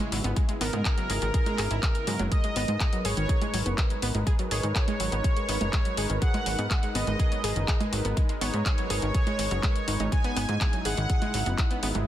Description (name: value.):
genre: melodic techno.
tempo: 123 BPM.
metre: 4/4.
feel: straight.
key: G# minor.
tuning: A4 = 440 Hz.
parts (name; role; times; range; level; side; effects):
warm analog pad; sustained chords; 0.0-12.1 s; C#3 to B4; -36 LUFS; equal; chorus, sidechain pumping.
wide unison pluck; arpeggios; 0.0-12.0 s; D#3 to G#4; -34 LUFS; equal; sidechain pumping, digital delay.
house drum kit; drums; 0.0-12.0 s; congas, handclaps, hi-hat; -32 LUFS; right 1 dB; none.
plucky analog bass; bass; 0.1-12.0 s; F#1 to G#2; -29 LUFS; equal; sidechain pumping.
electronic kick drum; drums; 0.4-11.7 s; none; -26 LUFS; equal; none.
soft supersaw; melody; 0.6-11.5 s; A#4 to G#5; -33 LUFS; right 1 dB; cassette tape, digital delay.
room: light reverb.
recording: dense, heavily limited modern master.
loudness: -24 LUFS.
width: side -12 dB against mid.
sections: 0.0-12.1 A section.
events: none.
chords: 0.0 C#m; 2.3 G#m; 10.1 C#madd9.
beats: | 0.37 0.85 1.34 1.83 | 2.32 2.81 3.29 3.78 | 4.27 4.76 5.24 5.73 | 6.22 6.71 7.20 7.68 | 8.17 8.66 9.15 9.63 | 10.12 10.61 11.10 11.59.